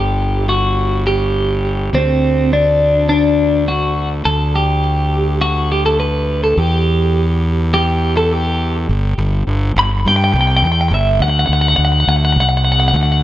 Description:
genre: post-rock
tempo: 104 BPM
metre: 4/4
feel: straight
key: unclear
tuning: A4 = 439 Hz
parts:
  - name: twelve-string electric guitar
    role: melody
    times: 0.0-13.2 s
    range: C4 to B5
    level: -16 LUFS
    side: left 1 dB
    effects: spring reverb, tape echo
  - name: fuzz fingered electric bass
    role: bass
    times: 0.0-13.2 s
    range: G1 to G2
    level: -15 LUFS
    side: equal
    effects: overdrive
room: light reverb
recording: none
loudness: -13 LUFS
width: side -13 dB against mid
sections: 0.0-8.9 A section; 8.9-13.2 B section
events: none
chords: 0.0 N.C.; 6.6 Em; 8.9 N.C.; 11.2 D7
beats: 0.20 0.78 1.36 | 1.94 2.52 3.10 3.68 | 4.26 4.84 5.42 6.00 | 6.58 7.16 7.74 8.32 | 8.90 9.47 10.05 10.63 | 11.21 11.79 12.37 12.95

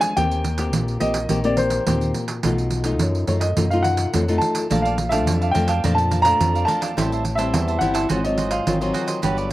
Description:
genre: samba and choro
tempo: 106 BPM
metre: 4/4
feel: straight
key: unclear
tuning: A4 = 440 Hz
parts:
  - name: warm baby grand piano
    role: melody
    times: 0.0-8.9 s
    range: C5 to Bb5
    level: -23 LUFS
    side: equal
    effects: slapback echo
  - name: nylon-string guitar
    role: accompaniment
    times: 0.0-9.5 s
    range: F2 to G4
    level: -24 LUFS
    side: left 2 dB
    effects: slapback echo
  - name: pandeiro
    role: percussion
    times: 0.0-9.5 s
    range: none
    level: -26 LUFS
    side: right 4 dB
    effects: none
  - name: fingered electric bass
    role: bass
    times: 0.2-9.5 s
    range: G1 to F#2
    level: -23 LUFS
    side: equal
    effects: none
  - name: cavaquinho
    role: accompaniment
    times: 4.7-9.5 s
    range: F#4 to A5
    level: -27 LUFS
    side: right 5 dB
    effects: slapback echo
room: little or no reverb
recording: recorded outdoors, with no room sound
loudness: -18 LUFS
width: side -16 dB against mid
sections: 0.0-9.5 A section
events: none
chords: 0.2 Eb6; 2.4 B7#11; 4.7 Bbmaj7; 7.0 Am7; 8.1 Ab6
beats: | 0.17 0.74 1.30 1.87 | 2.44 3.00 3.57 4.14 | 4.70 5.27 5.84 6.40 | 6.97 7.54 8.10 8.67 | 9.24

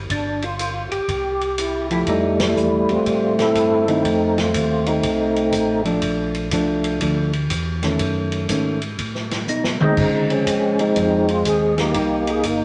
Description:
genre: soul jazz organ trio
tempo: 122 BPM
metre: 4/4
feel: swing 66% on 8ths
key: unclear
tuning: A4 = 441 Hz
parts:
  - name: mellow tonewheel organ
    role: bass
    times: 0.0-12.6 s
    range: G1 to Db3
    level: -30 LUFS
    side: equal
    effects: overdrive, chorus vibrato, slow rotary speaker
  - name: percussive tonewheel organ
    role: melody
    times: 0.1-5.8, 9.5-12.6 s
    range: F3 to A4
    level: -21 LUFS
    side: equal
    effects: slow rotary speaker, chorus vibrato
  - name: swinging big-band drum kit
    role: drums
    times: 0.1-12.6 s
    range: crash cymbal, hi-hat, kick drum, ride cymbal, snare drum, toms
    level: -28 LUFS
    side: equal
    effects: none
  - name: hollow-body jazz guitar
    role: accompaniment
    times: 1.9-12.2 s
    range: Eb3 to G4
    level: -24 LUFS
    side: equal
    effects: none
room: wet studio reverb, RT60 0.8 s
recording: nothing above 10.4 kHz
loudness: -20 LUFS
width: mono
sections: 0.0-2.1 A section; 2.1-12.6 B section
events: band accent 2.3; drum fill 9.5-10.0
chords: 0.1 Dmadd11/G; 1.1 C; 2.1 Fmaj9; 4.0 F7; 6.0 Bbmaj7; 8.0 B9; 10.0 Dbmaj9; 11.9 Cm7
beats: | 0.10 0.59 1.09 1.58 | 2.07 2.57 3.06 3.56 | 4.05 4.54 5.04 5.53 | 6.02 6.52 7.01 7.51 | 8.00 8.49 8.99 9.48 | 9.97 10.47 10.96 11.46 | 11.95 12.44

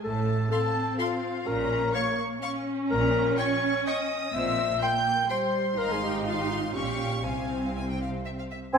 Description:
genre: cinematic, playful, whimsical film cue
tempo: 125 BPM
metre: 3/4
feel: straight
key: F minor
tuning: A4 = 441 Hz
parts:
  - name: warm studio violin section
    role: melody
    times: 0.0-8.5 s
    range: C5 to G6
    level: -34 LUFS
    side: left 2 dB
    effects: none
  - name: dark clarinet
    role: second line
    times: 0.0-8.8 s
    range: C4 to G5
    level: -29 LUFS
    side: left 1 dB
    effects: none
  - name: dark studio viola section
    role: accompaniment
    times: 0.0-8.5 s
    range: G3 to Eb4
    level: -32 LUFS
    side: right 1 dB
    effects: none
  - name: warm studio cello section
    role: bass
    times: 0.0-8.5 s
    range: Ab2 to C3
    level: -35 LUFS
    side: right 2 dB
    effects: none
  - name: warm studio double bass section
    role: bass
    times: 0.0-8.8 s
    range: Ab1 to F2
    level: -34 LUFS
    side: right 2 dB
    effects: none
  - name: rich studio violin section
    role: second line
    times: 0.5-8.6 s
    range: E5 to Db6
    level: -35 LUFS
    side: left 2 dB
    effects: none
  - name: bright silver concert flute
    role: second line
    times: 8.7-8.8 s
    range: C6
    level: -26 LUFS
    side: left 3 dB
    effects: none
  - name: clear oboe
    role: second line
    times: 8.7-8.8 s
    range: Ab5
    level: -25 LUFS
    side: right 1 dB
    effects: none
  - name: clear bassoon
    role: accompaniment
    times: 8.7-8.8 s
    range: C4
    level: -20 LUFS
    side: right 3 dB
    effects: none
  - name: warm French horn section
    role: sustained chords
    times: 8.7-8.8 s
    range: C4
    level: -28 LUFS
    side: left 2 dB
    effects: none
room: wet scoring stage reverb, RT60 1.5 s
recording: minimal, uncompressed stereo recording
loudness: -25 LUFS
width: side -6 dB against mid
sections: 0.0-8.7 A section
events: none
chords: 0.0 F/A; 1.5 Bbm; 4.3 C7/Bb; 5.8 Fm/Ab; 6.8 Gm7b5/Bb; 7.3 Fm/C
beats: | 0.04 0.52 1.00 | 1.48 1.95 2.43 | 2.91 3.39 3.87 | 4.34 4.82 5.30 | 5.78 6.27 6.75 | 7.25 7.75 8.25 | 8.74

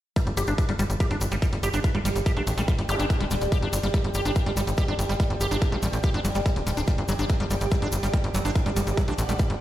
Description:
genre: psychedelic trance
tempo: 143 BPM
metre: 4/4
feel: straight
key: unclear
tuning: A4 = 445 Hz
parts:
  - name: liquid acid bass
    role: riff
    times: 0.2-9.4 s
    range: F#3 to G4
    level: -30 LUFS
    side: moving between left 4 dB and right 3 dB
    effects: chorus, auto-pan, sidechain pumping, ping-pong delay
  - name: electronic hi-hat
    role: drums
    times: 0.2-9.6 s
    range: none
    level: -40 LUFS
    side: left 2 dB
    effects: none
  - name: electronic kick drum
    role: drums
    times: 0.2-9.5 s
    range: none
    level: -24 LUFS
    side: equal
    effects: overdrive
  - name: egg shaker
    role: percussion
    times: 0.2-9.5 s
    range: none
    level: -38 LUFS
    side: left 3 dB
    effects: none
  - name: ethereal airy pad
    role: texture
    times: 0.9-9.6 s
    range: G4 to G5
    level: -32 LUFS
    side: right 2 dB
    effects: ensemble chorus, built-in reverb, phaser, sidechain pumping
  - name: tight sequencer bass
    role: bass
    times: 0.3-9.6 s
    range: D1 to A1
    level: -26 LUFS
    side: equal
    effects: none
  - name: zap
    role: sound effects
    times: 2.9-3.0 s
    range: none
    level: -34 LUFS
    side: right 1 dB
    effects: none
room: light reverb, digital ambience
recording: played on a big sound system in a bare room, stone room reverb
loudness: -22 LUFS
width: side -14 dB against mid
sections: 0.2-9.6 A section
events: none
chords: 0.2 G5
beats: | 0.16 0.58 1.00 1.42 | 1.84 2.26 2.68 3.10 | 3.52 3.94 4.36 4.78 | 5.20 5.62 6.04 6.46 | 6.88 7.30 7.72 8.13 | 8.55 8.97 9.39

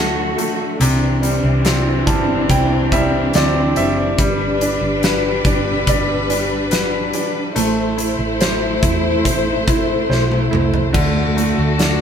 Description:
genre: pop ballad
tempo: 71 BPM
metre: 4/4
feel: straight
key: G major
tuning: A4 = 440 Hz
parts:
  - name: bright grand piano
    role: accompaniment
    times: 0.0-12.0 s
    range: C3 to A5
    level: -20 LUFS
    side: right 2 dB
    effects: none
  - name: warm studio string section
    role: sustained chords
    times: 0.0-12.0 s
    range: D3 to C5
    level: -20 LUFS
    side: left 2 dB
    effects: none
  - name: hollow-body short-scale fingered electric bass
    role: bass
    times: 0.0-12.0 s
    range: F#1 to E2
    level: -21 LUFS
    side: equal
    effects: none
  - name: huge arena drum kit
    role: drums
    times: 0.4-12.0 s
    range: crash cymbal, hi-hat, kick drum, snare drum, toms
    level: -20 LUFS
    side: equal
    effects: none
room: wet stone room reverb, RT60 1.1 s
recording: band playing live in one room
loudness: -14 LUFS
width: side -8 dB against mid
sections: 0.0-12.0 A section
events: grand piano fill 1.6-4.2; drum fill 10.1-10.9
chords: 0.0 D; 0.8 Cadd9; 4.2 G; 7.6 Am; 10.9 D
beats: | 0.80 1.65 2.49 3.34 | 4.18 5.03 5.87 6.72 | 7.56 8.41 9.25 10.10 | 10.94 11.79

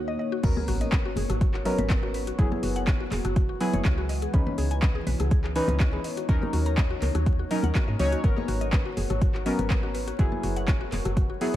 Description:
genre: deep house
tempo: 123 BPM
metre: 4/4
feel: swing 53% on 16ths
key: G# minor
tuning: A4 = 440 Hz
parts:
  - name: deep dark ambient pad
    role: sustained chords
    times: 0.0-11.6 s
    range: E3 to C#5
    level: -34 LUFS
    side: left 1 dB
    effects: chorus, built-in reverb, sidechain pumping
  - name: woody FM bass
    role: bass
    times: 0.0-11.6 s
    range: E1 to G#2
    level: -29 LUFS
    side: equal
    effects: sidechain pumping
  - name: mallet-like synth pluck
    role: arpeggios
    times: 0.1-11.6 s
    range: F#4 to A#5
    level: -37 LUFS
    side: left 3 dB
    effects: chorus, sidechain pumping, digital delay
  - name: deep mellow chord stab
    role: stabs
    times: 0.4-11.6 s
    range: E3 to C#5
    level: -30 LUFS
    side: equal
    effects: chorus, sidechain pumping, digital delay
  - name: deep house drum kit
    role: drums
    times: 0.4-11.6 s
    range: crash cymbal, handclaps, hi-hat, rim click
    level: -35 LUFS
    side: equal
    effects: overdrive
  - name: electronic kick drum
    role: drums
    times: 0.4-11.3 s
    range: none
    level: -24 LUFS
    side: equal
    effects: overdrive
  - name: sub drop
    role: sound effects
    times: 0.5-2.4 s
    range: none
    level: -36 LUFS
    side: equal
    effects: none
  - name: congas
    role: percussion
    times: 0.6-11.0 s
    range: none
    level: -35 LUFS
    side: left 3 dB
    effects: none
room: light reverb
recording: vinyl crackle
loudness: -23 LUFS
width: side -13 dB against mid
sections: 0.4-11.6 A section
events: drop 0.4-11.6; impact 0.4-2.4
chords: 0.4 G#m11; 2.4 F#9sus4; 4.1 C#m9; 6.0 D#m7; 8.2 G#m11; 10.2 F#9sus4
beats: | 0.43 0.92 1.41 1.90 | 2.39 2.87 3.36 3.85 | 4.34 4.83 5.31 5.80 | 6.29 6.78 7.26 7.75 | 8.24 8.73 9.21 9.70 | 10.19 10.68 11.17

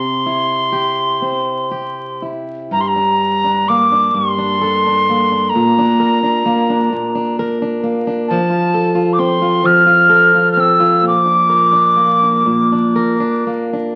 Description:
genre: celtic folk, Celtic slow air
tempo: 43 BPM (dotted quarters)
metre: 6/8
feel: uneven beats, rubato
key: unclear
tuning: A4 = 440 Hz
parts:
  - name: wooden whistle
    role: melody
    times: 0.0-13.4 s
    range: A5 to F6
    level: -16 LUFS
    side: equal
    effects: none
  - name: fingerpicked plugged-in swing-style acoustic guitar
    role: accompaniment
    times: 0.0-14.0 s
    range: G2 to Bb4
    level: -19 LUFS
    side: equal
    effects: none
room: wet club reverb, RT60 0.6 s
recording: very old 78 rpm record, vinyl crackle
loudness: -14 LUFS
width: mono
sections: 0.0-2.7 A section; 2.7-14.0 B section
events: none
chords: 0.0 C; 2.7 Gmadd9; 5.5 Bb; 8.3 F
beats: 1.21 | 2.71 4.16 | 5.54 6.92 | 8.29 9.64 | 11.03 12.47

